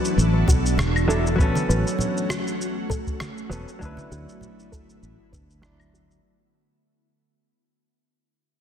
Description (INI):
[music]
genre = sunset chillout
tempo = 99 BPM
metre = 4/4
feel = swing 54% on 16ths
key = unclear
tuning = A4 = 440 Hz
[part]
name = hollow-body jazz guitar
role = accompaniment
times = 0.0-6.2 s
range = F#3 to D5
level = -27 LUFS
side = left 2 dB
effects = auto-pan, low-pass filter, tape echo
[part]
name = ethereal airy pad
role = sustained chords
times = 0.0-6.2 s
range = D3 to A4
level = -29 LUFS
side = equal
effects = ensemble chorus, built-in reverb
[part]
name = soft round pluck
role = arpeggios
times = 0.0-6.2 s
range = F#4 to B4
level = -34 LUFS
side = equal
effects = chorus, vintage 12-bit sampler grit, tape echo
[part]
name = electronic shaker, rim click and claves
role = drums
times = 0.0-6.2 s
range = none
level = -31 LUFS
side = left 1 dB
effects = soft clipping on snare
[part]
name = fingered electric bass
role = bass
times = 0.2-6.2 s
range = E1 to D2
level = -22 LUFS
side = equal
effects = none
[part]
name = electronic kick drum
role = drums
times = 0.5-5.5 s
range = none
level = -23 LUFS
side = equal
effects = none
[part]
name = congas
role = percussion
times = 0.5-5.8 s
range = none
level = -32 LUFS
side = right 2 dB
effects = none
[sound]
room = moderate concert hall reverb, RT60 2.0 s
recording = dense, heavily limited modern master, faint mains hum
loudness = -20 LUFS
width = side -9 dB against mid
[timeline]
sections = 0.0-6.2 A section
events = fade-out 0.0-6.2; filter sweep on hollow-body jazz guitar 0.0-6.2; filter sweep on synth arpeggio sound 0.0-6.2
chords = 0.0 E9sus4; 1.4 A69; 3.8 D69